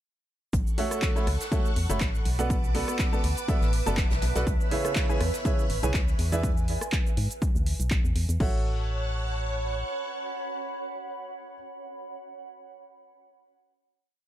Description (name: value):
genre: piano house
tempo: 122 BPM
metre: 4/4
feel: swing 54% on 16ths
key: A major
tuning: A4 = 441 Hz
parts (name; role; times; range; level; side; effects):
- string machine, violins; sustained chords; 0.5-11.5 s; A4 to F#6; -38 LUFS; equal; ensemble chorus, sidechain pumping
- organ-like FM bass; bass; 0.5-9.8 s; F#1 to G#2; -28 LUFS; equal; sidechain pumping
- electronic kick drum; drums; 0.5-8.5 s; none; -27 LUFS; equal; overdrive
- punchy analog drum machine; drums; 0.5-8.5 s; crash cymbal, handclaps, hi-hat, rim click, shaker; -35 LUFS; right 1 dB; overdrive
- soft brush drum kit; drums; 0.5-6.3 s; hi-hat, snare drum; -41 LUFS; left 2 dB; none
- clear upright piano; riff; 0.8-11.5 s; C#3 to B5; -32 LUFS; right 2 dB; sidechain pumping, digital delay
- granular cloud pad; texture; 1.9-11.7 s; B4 to B5; -37 LUFS; right 2 dB; built-in reverb, sidechain pumping
room: small room ambience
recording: dark, warm production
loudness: -24 LUFS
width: side -12 dB against mid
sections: 0.5-8.4 drop; 8.4-12.3 final chord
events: drop 0.5-8.4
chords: 0.5 A6; 2.3 Bm7; 4.5 C#m7; 6.2 E7; 8.4 A6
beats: | 0.53 1.02 1.52 2.01 | 2.50 2.99 3.48 3.98 | 4.47 4.96 5.45 5.94 | 6.43 6.93 7.42 7.91 | 8.40 8.89 9.38 9.88 | 10.37 10.86 11.35